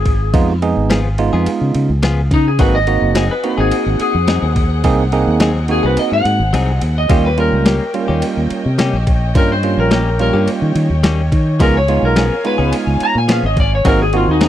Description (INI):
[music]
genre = straight-eighth soul blues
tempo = 106 BPM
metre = 4/4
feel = straight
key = Ab mixolydian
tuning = A4 = 439 Hz
[part]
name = clean lap steel guitar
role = melody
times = 0.0-14.5 s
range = Eb4 to Bb5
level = -18 LUFS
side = left 2 dB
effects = none
[part]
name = fingered electric bass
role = bass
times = 0.0-14.5 s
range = Gb1 to Eb3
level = -16 LUFS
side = equal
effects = none
[part]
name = dusty soul sampler-style drum kit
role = drums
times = 0.1-14.5 s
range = kick drum, ride cymbal, snare drum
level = -18 LUFS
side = equal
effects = overdrive
[part]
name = barky tine electric piano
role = accompaniment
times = 0.3-14.5 s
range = G3 to Ab4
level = -18 LUFS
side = right 6 dB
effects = none
[part]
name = direct-recorded clean electric guitar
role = stabs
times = 0.9-14.5 s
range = F3 to Ab4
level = -23 LUFS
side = left 5 dB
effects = spring reverb
[part]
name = dark studio string section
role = sustained chords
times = 2.6-14.5 s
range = Ab4 to Ab5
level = -27 LUFS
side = left 3 dB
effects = none
[sound]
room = little or no reverb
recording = dry, close 1970s-style studio recording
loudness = -12 LUFS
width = side -12 dB against mid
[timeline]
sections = 0.0-14.5 A section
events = electric slide guitar solo 0.0-14.5; kick and snare drop out 6.5-7.1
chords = 0.0 Db7; 2.6 Ab7; 7.1 Eb7; 11.6 Db7; 13.9 Ab7